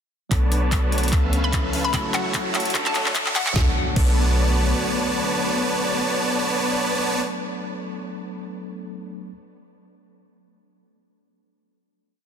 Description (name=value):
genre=future bass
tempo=148 BPM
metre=4/4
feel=swing 54% on 16ths, half-time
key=B minor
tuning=A4 = 440 Hz
part: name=tine electric piano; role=accompaniment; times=0.3-9.3 s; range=E#3 to C#5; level=-30 LUFS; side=left 2 dB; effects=medium stereo tremolo, sidechain pumping, dub echo
part: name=airy breathy pad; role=sustained chords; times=0.3-6.8 s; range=C#3 to C#5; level=-36 LUFS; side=equal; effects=chorus, vintage 12-bit sampler grit, sidechain pumping
part: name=concert harp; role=arpeggios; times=0.3-7.3 s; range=A3 to A4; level=-36 LUFS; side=left 5 dB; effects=none
part: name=supersaw chords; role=riff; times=0.3-7.2 s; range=F#3 to A5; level=-24 LUFS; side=right 1 dB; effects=sidechain pumping, low-pass filter, dub echo
part: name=warm 808-style bass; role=bass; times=0.3-4.7 s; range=F#1 to D2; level=-22 LUFS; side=equal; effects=sidechain pumping
part: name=electronic kick drum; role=drums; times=0.3-4.1 s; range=none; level=-23 LUFS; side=equal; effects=none
part: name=trap drum kit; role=drums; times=0.3-4.1 s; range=crash cymbal, handclaps, hi-hat, snare drum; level=-27 LUFS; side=left 1 dB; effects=none
part: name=riser and impact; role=sound effects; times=1.4-6.8 s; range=none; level=-31 LUFS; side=right 1 dB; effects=none
part: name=hollow square pluck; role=melody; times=1.4-3.5 s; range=F#5 to B5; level=-30 LUFS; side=left 2 dB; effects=chorus, sidechain pumping, ping-pong delay
room=light reverb, digital ambience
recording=dense, heavily limited modern master, high-pass filter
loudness=-19 LUFS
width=side -8 dB against mid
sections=0.3-3.6 build; 3.6-6.8 final chord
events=build-up 0.3-3.6; drum fill 0.3-3.6; filter sweep on supersaw synth 0.3-3.6; filter sweep 0.3-3.6; riser 1.4-3.6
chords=0.3 Bm7; 1.1 C#7alt; 1.9 F#m7; 2.7 Dmaj7; 3.6 Bm7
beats=| 0.32 0.72 1.13 1.53 | 1.94 2.34 2.75 3.15 | 3.56 3.96 4.37 4.77 | 5.18 5.58 5.99 6.40